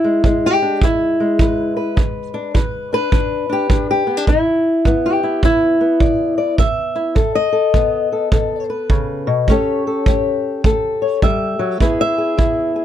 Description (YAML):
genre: acoustic country blues, solo or duo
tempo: 104 BPM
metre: 4/4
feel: swing 64% on 8ths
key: E mixolydian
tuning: A4 = 440 Hz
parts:
  - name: fingerpicked old ladder-braced acoustic guitar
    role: melody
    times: 0.0-12.8 s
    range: G#2 to E5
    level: -16 LUFS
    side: left 2 dB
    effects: none
  - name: kick drum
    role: drums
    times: 0.2-12.6 s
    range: none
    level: -17 LUFS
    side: right 1 dB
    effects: none
room: little or no reverb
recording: close, detailed microphones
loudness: -14 LUFS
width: side -10 dB against mid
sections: 0.0-12.8 A section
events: none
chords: 0.0 E7; 7.2 B7; 9.5 A7; 11.8 E